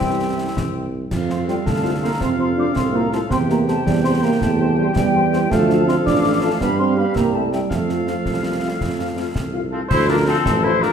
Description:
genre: military-style march for wind band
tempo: 109 BPM (dotted quarters)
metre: 6/8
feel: straight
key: F major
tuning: A4 = 438 Hz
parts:
  - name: dark trumpet section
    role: melody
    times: 0.0-10.9 s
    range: A4 to F5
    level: -28 LUFS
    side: left 3 dB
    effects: none
  - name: clear woodwind section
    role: second line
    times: 0.0-10.9 s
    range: C4 to G5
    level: -27 LUFS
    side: left 1 dB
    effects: none
  - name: dark euphonium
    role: second line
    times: 0.0-9.3 s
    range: F3 to D4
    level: -22 LUFS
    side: right 4 dB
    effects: none
  - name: hollow flute section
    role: second line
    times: 0.0-10.9 s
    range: A4 to D6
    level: -26 LUFS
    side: left 4 dB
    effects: none
  - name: mellow French horn section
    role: accompaniment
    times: 0.0-10.9 s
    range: G3 to G4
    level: -28 LUFS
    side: left 7 dB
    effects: none
  - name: dark trombone section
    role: sustained chords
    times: 0.0-10.9 s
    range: A2 to A3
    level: -26 LUFS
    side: right 2 dB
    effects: none
  - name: mellow tuba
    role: bass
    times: 0.0-10.9 s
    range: A1 to G2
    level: -22 LUFS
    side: right 3 dB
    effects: none
  - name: concert snare drum, concert bass drum and clash cymbals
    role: drums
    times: 0.0-10.9 s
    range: none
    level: -26 LUFS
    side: left 1 dB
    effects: none
room: wet recital hall reverb, RT60 1.3 s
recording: none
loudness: -16 LUFS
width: side -7 dB against mid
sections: 0.0-9.9 A section; 9.9-10.9 B section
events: none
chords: 0.0 C; 1.1 F; 3.3 C/E; 5.5 Dm; 6.6 G5; 7.2 C; 7.7 F; 9.9 Dm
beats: | 0.01 0.56 | 1.11 1.66 | 2.21 2.76 | 3.31 3.86 | 4.41 4.96 | 5.51 6.06 | 6.61 7.16 | 7.71 8.26 | 8.81 9.36 | 9.91 10.46

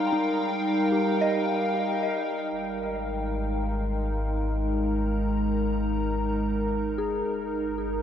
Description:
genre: ambient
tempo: 76 BPM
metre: 3/4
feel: straight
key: unclear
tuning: A4 = 440 Hz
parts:
  - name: evolving wavetable pad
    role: sustained chords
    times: 0.0-8.0 s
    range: G3 to Bb5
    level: -26 LUFS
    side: equal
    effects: chorus, built-in reverb
  - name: soft synth bell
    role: arpeggios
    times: 0.0-7.4 s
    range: Eb4 to C6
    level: -32 LUFS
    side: left 1 dB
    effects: chorus, phaser, ping-pong delay
  - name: warm sub bass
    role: bass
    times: 2.5-8.0 s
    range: G1 to Ab1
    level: -30 LUFS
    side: left 1 dB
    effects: tube saturation
room: wet huge ambient reverb, RT60 8.9 s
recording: dark, warm production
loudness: -25 LUFS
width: side -9 dB against mid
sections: 0.0-2.5 A section; 2.5-8.0 B section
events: filter sweep on ambient pad 2.5-8.0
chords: 0.0 Eb/G; 2.5 Absus2; 7.3 Eb/G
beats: | 0.09 0.89 1.69 | 2.50 3.30 4.10 | 4.89 5.67 6.46 | 7.25

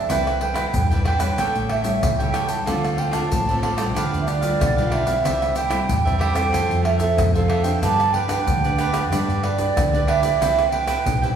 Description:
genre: samba and choro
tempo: 93 BPM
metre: 4/4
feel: straight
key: C major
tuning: A4 = 440 Hz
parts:
  - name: breathy mellow concert flute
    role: melody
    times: 0.0-11.4 s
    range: D5 to A5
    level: -23 LUFS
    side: right 4 dB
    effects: none
  - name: cavaquinho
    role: accompaniment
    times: 0.0-11.4 s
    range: D4 to G5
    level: -28 LUFS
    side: right 3 dB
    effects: none
  - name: nylon-string guitar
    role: accompaniment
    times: 0.0-11.4 s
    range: G2 to A4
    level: -27 LUFS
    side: left 2 dB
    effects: none
  - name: woody fretless electric bass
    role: bass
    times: 0.1-11.4 s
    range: A1 to G2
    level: -25 LUFS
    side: right 1 dB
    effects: none
  - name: egg shaker, surdo, pandeiro and tamborim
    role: percussion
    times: 0.1-11.4 s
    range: none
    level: -24 LUFS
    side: left 1 dB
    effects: none
room: wet recital hall reverb, RT60 1.7 s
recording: recorded in a church or concert hall, studio ambience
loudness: -18 LUFS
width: side -8 dB against mid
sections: 0.1-11.4 A section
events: none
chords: 0.1 Cmaj7; 1.4 A7; 2.7 Dm7; 4.0 G7/D; 5.2 C; 6.5 Fmaj7; 7.8 G; 10.4 Cmaj7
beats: | 0.09 0.74 1.38 2.03 | 2.67 3.32 3.96 4.61 | 5.25 5.89 6.54 7.18 | 7.83 8.47 9.12 9.77 | 10.41 11.06

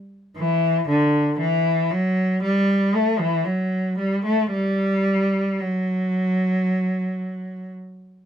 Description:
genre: classical, baroque-style suite movement for unaccompanied cello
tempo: 57 BPM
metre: 4/4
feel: rubato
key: unclear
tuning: A4 = 443 Hz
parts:
  - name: rich cello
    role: solo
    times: 0.4-7.7 s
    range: D3 to A3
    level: -20 LUFS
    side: equal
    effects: none
room: little or no reverb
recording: close, detailed microphones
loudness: -19 LUFS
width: side -9 dB against mid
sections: 0.0-8.3 A section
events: none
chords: none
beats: | 0.36 1.38 2.42 3.46 | 4.51 5.59 6.66 7.72

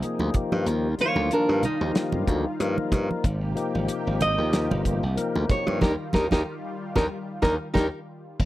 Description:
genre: electric jazz fusion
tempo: 93 BPM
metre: 4/4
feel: swing 56% on 16ths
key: Eb major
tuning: A4 = 440 Hz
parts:
  - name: tonewheel organ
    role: accompaniment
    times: 0.0-7.9 s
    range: Eb3 to Bb4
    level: -29 LUFS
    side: left 4 dB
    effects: slow rotary speaker
  - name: analog string pad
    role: sustained chords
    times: 0.0-8.4 s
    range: C3 to G5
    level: -35 LUFS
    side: equal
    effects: ensemble chorus
  - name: glassy slap bass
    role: bass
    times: 0.0-8.5 s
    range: G1 to G2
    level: -26 LUFS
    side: equal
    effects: none
  - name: damped 70s drum kit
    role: drums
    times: 0.0-8.5 s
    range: crash cymbal, hi-hat, kick drum, snare drum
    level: -25 LUFS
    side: equal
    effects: none
  - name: congas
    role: percussion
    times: 0.2-7.9 s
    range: none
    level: -31 LUFS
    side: right 3 dB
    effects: none
  - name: nylon-string guitar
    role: melody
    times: 1.0-7.9 s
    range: D4 to Eb5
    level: -26 LUFS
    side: right 1 dB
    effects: slapback echo
room: light reverb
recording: dry, close 1970s-style studio recording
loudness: -22 LUFS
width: side -16 dB against mid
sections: 0.0-8.4 A section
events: nylon-string guitar solo 0.0-8.4; band accent 5.8-8.4; tonewheel organ fill 7.1-8.4; drum fill 8.1-8.4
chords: 0.3 Ebadd9; 3.2 Abmaj9; 5.5 Ebmaj9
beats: 0.03 | 0.67 1.31 1.95 2.60 | 3.24 3.88 4.53 5.17 | 5.81 6.46 7.10 7.75 | 8.39

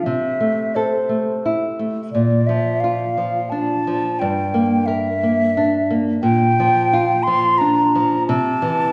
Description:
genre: romantic duo for flute and classical guitar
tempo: 88 BPM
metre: 3/4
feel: rubato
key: unclear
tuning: A4 = 438 Hz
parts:
  - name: mellow hollow silver concert flute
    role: melody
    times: 0.0-8.9 s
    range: C5 to C6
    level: -22 LUFS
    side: equal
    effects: none
  - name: nylon-string guitar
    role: accompaniment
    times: 0.0-8.9 s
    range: G2 to Bb4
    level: -21 LUFS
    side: equal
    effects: none
room: wet recital hall reverb, RT60 1.5 s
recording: recorded in a church or concert hall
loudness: -18 LUFS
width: mono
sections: 0.0-8.9 A section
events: none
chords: 0.1 Am/C; 2.1 Bb; 4.2 Em7b5/G; 6.2 Gm7/Bb; 8.3 C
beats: | 0.07 0.76 1.45 | 2.13 2.83 3.52 | 4.20 4.87 5.55 | 6.23 6.91 7.59 | 8.28

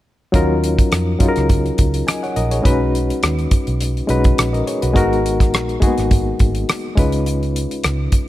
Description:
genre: lush 1970s-style soul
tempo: 104 BPM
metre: 4/4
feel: swing 54% on 16ths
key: Eb minor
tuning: A4 = 440 Hz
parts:
  - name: barky reed electric piano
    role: accompaniment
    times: 0.3-8.3 s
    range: Gb3 to Ab5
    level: -19 LUFS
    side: left 2 dB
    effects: overdrive, fast tremolo
  - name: vintage muted fingered electric bass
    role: bass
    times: 0.3-8.1 s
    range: Ab1 to F2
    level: -20 LUFS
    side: right 1 dB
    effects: none
  - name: damped 70s drum kit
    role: drums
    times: 0.3-8.3 s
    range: hi-hat, kick drum, rim click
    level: -17 LUFS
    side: equal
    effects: none
room: little or no reverb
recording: none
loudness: -15 LUFS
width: side -15 dB against mid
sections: 0.3-8.3 A section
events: none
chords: 0.3 Ebm7; 2.6 B6; 5.0 Abm7; 7.0 Db7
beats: | 0.34 0.91 1.49 2.07 | 2.65 3.22 3.80 4.38 | 4.96 5.53 6.11 6.69 | 7.26 7.84

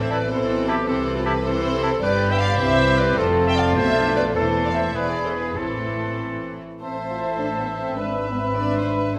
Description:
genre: quick classical-period movement for symphony orchestra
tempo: 103 BPM (dotted quarters)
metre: 6/8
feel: rubato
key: A minor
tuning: A4 = 443 Hz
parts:
  - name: dark studio violin section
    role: melody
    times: 0.0-9.2 s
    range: A4 to G5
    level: -30 LUFS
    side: equal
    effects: none
  - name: clear clarinet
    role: second line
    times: 0.0-9.2 s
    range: E4 to E5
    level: -29 LUFS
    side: equal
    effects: none
  - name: clear studio violin section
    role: second line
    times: 0.0-9.2 s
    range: A3 to D5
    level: -35 LUFS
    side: equal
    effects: none
  - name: rich studio viola section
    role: accompaniment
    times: 0.0-9.2 s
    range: D3 to C5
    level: -30 LUFS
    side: equal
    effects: none
  - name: mellow French horn section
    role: sustained chords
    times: 0.0-9.2 s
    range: E3 to C5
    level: -31 LUFS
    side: equal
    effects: none
  - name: dark studio double bass section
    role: bass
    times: 0.0-9.2 s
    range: E1 to C2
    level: -32 LUFS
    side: equal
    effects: none
  - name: warm studio cello section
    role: bass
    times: 0.0-9.2 s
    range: E2 to C3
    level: -31 LUFS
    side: equal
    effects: none
  - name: timpani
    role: percussion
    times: 0.0-0.3, 4.3-4.9 s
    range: E2 to A2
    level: -38 LUFS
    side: equal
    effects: none
  - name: clear oboe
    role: second line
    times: 0.1-9.2 s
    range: E4 to E5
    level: -32 LUFS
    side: equal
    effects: none
  - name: concert flute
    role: second line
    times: 0.1-9.2 s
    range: A5 to C6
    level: -31 LUFS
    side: equal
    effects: none
room: wet recital hall reverb, RT60 1.4 s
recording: none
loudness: -22 LUFS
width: mono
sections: 0.0-6.8 A section; 6.8-9.2 A section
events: none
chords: 0.0 Am; 0.9 Am/C; 2.0 G; 2.6 Cmaj7; 3.2 F; 3.8 Bm7b5; 4.4 Am/E; 5.0 E7; 5.6 Am; 8.0 E7/G#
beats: 0.30 | 0.87 1.45 | 2.02 2.60 | 3.18 3.77 | 4.35 4.95 | 5.57 6.20 | 6.82 7.40 | 7.98 8.57 | 9.16

